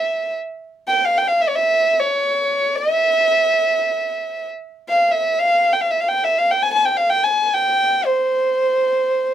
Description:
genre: Persian modal ensemble.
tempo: free time.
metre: none.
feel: none.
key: unclear.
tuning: A4 = 437 Hz.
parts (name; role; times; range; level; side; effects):
dark violin; solo; 0.0-9.3 s; C5 to A5-45c; -16 LUFS; right 1 dB; none.
room: light reverb.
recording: none.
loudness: -15 LUFS.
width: side -10 dB against mid.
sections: 0.0-9.3 A section.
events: none.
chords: none.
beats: free time.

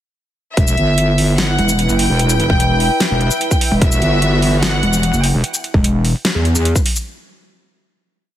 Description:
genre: heavy wobble dubstep.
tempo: 148 BPM.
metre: 4/4.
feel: half-time.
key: E minor.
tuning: A4 = 440 Hz.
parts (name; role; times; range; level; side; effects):
clear studio violin section; melody; 0.6-5.4 s; E5 to G5; -19 LUFS; equal; digital delay.
wobble bass; bass; 0.6-5.4 s; E1 to G1; -15 LUFS; equal; chorus, overdrive.
dubstep drum kit; drums; 0.6-7.0 s; hi-hat, shaker, snare drum; -20 LUFS; equal; none.
electronic kick drum; drums; 0.6-6.8 s; none; -16 LUFS; equal; overdrive.
warbly tape-like pad; texture; 1.0-5.4 s; E4 to E5; -24 LUFS; right 2 dB; chorus, built-in reverb, sidechain pumping.
pulsing pluck wobble bass; bass; 1.6-6.7 s; E1 to E2; -15 LUFS; equal; chorus, overdrive.
supersaw chords; sustained chords; 3.8-5.4 s; E3 to F#4; -24 LUFS; equal; sidechain pumping.
room: light reverb.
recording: heavily compressed radio sound.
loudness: -13 LUFS.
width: side -12 dB against mid.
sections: 0.6-7.1 drop.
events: drop 0.6-7.1.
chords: 0.6 Emadd9.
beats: | 0.57 0.98 1.38 1.79 | 2.19 2.60 3.00 3.41 | 3.82 4.22 4.63 5.03 | 5.44 5.84 6.25 6.65.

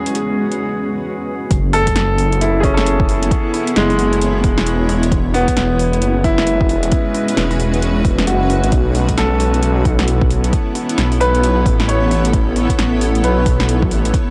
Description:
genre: future garage.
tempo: 133 BPM.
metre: 4/4.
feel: swing 61% on 16ths.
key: F# minor.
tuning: A4 = 440 Hz.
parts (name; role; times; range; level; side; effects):
bright upright piano; accompaniment; 0.0-14.3 s; G#3 to C#5; -22 LUFS; equal; sidechain pumping, analog delay.
granular cloud pad; sustained chords; 0.0-14.3 s; E2 to C#5; -23 LUFS; equal; built-in reverb, sidechain pumping.
wind-like tuned noise texture; texture; 0.0-0.6 s; none; barely audible; none; none.
deep house drum kit; drums; 0.1-14.2 s; hi-hat, rim click, snare drum; -25 LUFS; equal; overdrive, vintage 12-bit sampler grit.
swelling detuned saw bass; bass; 1.5-14.1 s; E1 to B1; -19 LUFS; equal; sidechain pumping.
electronic kick drum; drums; 1.5-14.2 s; none; -20 LUFS; equal; overdrive, vintage 12-bit sampler grit.
room: digital ambience.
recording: dry, gritty hardware recording, transformer saturation.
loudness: -16 LUFS.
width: mono.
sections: 0.0-1.5 A section; 1.5-14.3 B section.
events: break 0.6-1.5.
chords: 0.0 E; 1.5 F#m7; 5.1 E; 8.7 B5; 12.3 A.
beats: 0.15 0.60 1.05 | 1.51 1.96 2.41 2.86 | 3.31 3.76 4.21 4.66 | 5.12 5.57 6.02 6.47 | 6.92 7.37 7.82 8.27 | 8.72 9.18 9.63 10.08 | 10.53 10.98 11.43 11.88 | 12.33 12.78 13.23 13.69 | 14.14.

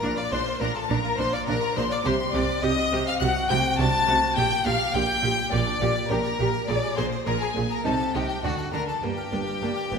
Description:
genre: classical, baroque-style concerto movement with solo episodes.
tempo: 104 BPM.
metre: 4/4.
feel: straight.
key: G minor.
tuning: A4 = 442 Hz.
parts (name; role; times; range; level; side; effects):
rich violin; melody; 0.0-10.0 s; F#4 to A5; -28 LUFS; left 3 dB; none.
warm symphonic violin section; melody; 0.0-10.0 s; F#5 to A6; -31 LUFS; left 3 dB; none.
warm studio violin section; second line; 0.0-10.0 s; F#4 to A5; -29 LUFS; left 4 dB; none.
harpsichord; accompaniment; 0.0-10.0 s; G2 to Bb4; -32 LUFS; equal; none.
rich chamber viola section; accompaniment; 0.0-10.0 s; Bb3 to Ab4; -32 LUFS; right 2 dB; none.
bright chamber double bass section; bass; 0.0-10.0 s; G1 to D2; -30 LUFS; right 3 dB; none.
warm symphonic cello section; bass; 0.0-10.0 s; G2 to D3; -31 LUFS; right 4 dB; none.
room: wet concert hall reverb, RT60 2.1 s.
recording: minimal, uncompressed stereo recording.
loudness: -22 LUFS.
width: side -6 dB against mid.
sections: 0.0-10.0 A section.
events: none.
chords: 0.0 Bb; 2.0 Cm; 3.2 D7/C; 4.4 Gm/Bb; 6.7 Bb5; 7.8 Cm; 8.4 D; 9.0 Gm.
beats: 0.32 0.90 1.47 | 2.05 2.63 3.21 3.78 | 4.36 4.94 5.52 6.10 | 6.68 7.26 7.85 8.44 | 9.03 9.62.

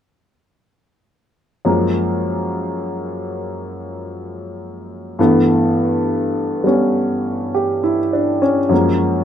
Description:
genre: solo jazz.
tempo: 68 BPM.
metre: 4/4.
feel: swing 66% on 8ths.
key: unclear.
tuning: A4 = 441 Hz.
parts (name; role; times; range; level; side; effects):
warm upright piano; solo; 1.6-9.2 s; F#2 to G4; -16 LUFS; equal; none.
room: wet club reverb, RT60 0.7 s.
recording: none.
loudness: -15 LUFS.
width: side -9 dB against mid.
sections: 1.7-9.2 A section.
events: none.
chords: 1.7 F#maj9; 5.2 G69; 8.7 F#maj9.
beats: | 1.66 2.54 3.42 4.31 | 5.19 6.07 6.95 7.83 | 8.71.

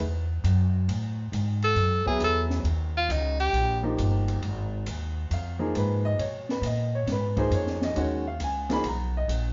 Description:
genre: modal jazz.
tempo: 136 BPM.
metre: 4/4.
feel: swing 67% on 8ths.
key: G# dorian from 4.4 s.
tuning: A4 = 439 Hz.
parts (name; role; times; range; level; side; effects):
upright bass; bass; 0.0-9.5 s; G1 to B2; -29 LUFS; equal; none.
open jazz drum kit; drums; 0.0-9.4 s; hi-hat, kick drum, ride cymbal, snare drum; -39 LUFS; equal; none.
bright tenor saxophone; melody; 1.6-3.8 s; D#4 to A4; -28 LUFS; equal; none.
clear grand piano; accompaniment; 2.1-9.3 s; D#3 to B5; -32 LUFS; equal; none.
room: wet studio reverb, RT60 0.9 s.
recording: heard from further back in the room, nothing above 7.5 kHz.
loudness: -27 LUFS.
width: mono.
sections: 0.0-4.4 A section; 4.4-9.5 A section.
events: tenor saxophone solo 0.0-4.4.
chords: 0.0 F#m9; 2.7 D#7; 4.4 G#m69.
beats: 0.01 0.45 | 0.89 1.34 1.78 2.22 | 2.66 3.10 3.54 3.98 | 4.42 4.87 5.31 5.75 | 6.19 6.64 7.08 7.52 | 7.96 8.41 8.85 9.29.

